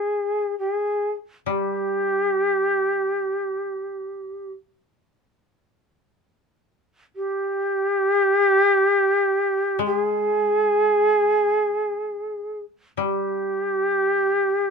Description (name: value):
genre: japanese traditional, Japanese chamber music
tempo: free time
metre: none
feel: none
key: unclear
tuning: A4 = 441 Hz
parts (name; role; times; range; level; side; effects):
- reedy shakuhachi; melody; 0.0-14.7 s; G4 to Ab4; -20 LUFS; equal; none
- koto; accompaniment; 1.5-14.7 s; G3 to Ab3; -29 LUFS; left 4 dB; none
room: moderate small room ambience, RT60 0.5 s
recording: minimal, uncompressed stereo recording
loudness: -20 LUFS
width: side -5 dB against mid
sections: 0.0-14.7 A section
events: none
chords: none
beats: free time